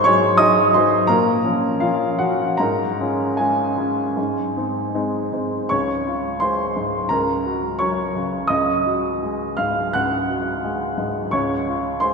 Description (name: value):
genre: classical, romantic character piece for solo piano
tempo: 75-87 BPM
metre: 4/4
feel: rubato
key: Db major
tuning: A4 = 440 Hz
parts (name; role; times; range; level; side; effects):
- clear upright piano; solo; 0.0-12.1 s; Db2 to Gb6; -18 LUFS; equal; none
room: wet church reverb, RT60 3.0 s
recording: minimal, uncompressed stereo recording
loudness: -18 LUFS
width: side -4 dB against mid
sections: 0.0-5.7 A section; 5.7-12.1 B section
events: none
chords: 0.0 Ab7; 1.1 Bbm; 2.6 Db/Ab; 4.2 Ab; 5.7 Db; 7.1 Gb/Db; 8.5 Ab5/Db; 11.3 Db